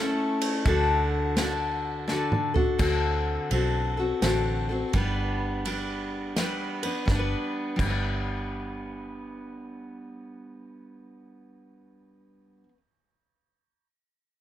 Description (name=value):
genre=honky-tonk and classic country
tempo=84 BPM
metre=3/4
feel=swing 65% on 8ths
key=G major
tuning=A4 = 440 Hz
part: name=picked steel-string acoustic guitar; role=accompaniment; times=0.0-12.8 s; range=D3 to B4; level=-28 LUFS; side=left 2 dB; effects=none
part: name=vintage muted fingered electric bass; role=bass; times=0.0-12.6 s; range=G1 to D2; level=-30 LUFS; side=right 1 dB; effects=none
part: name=unplugged drum kit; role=drums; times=0.4-8.1 s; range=crash cymbal, kick drum, ride cymbal, snare drum, toms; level=-31 LUFS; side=right 1 dB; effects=none
room=light reverb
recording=none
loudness=-24 LUFS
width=side -12 dB against mid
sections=0.0-2.8 A section; 2.8-7.1 B section; 7.1-11.4 C section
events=drum fill 2.1-2.8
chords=0.0 A; 0.7 D; 2.8 D7; 4.9 G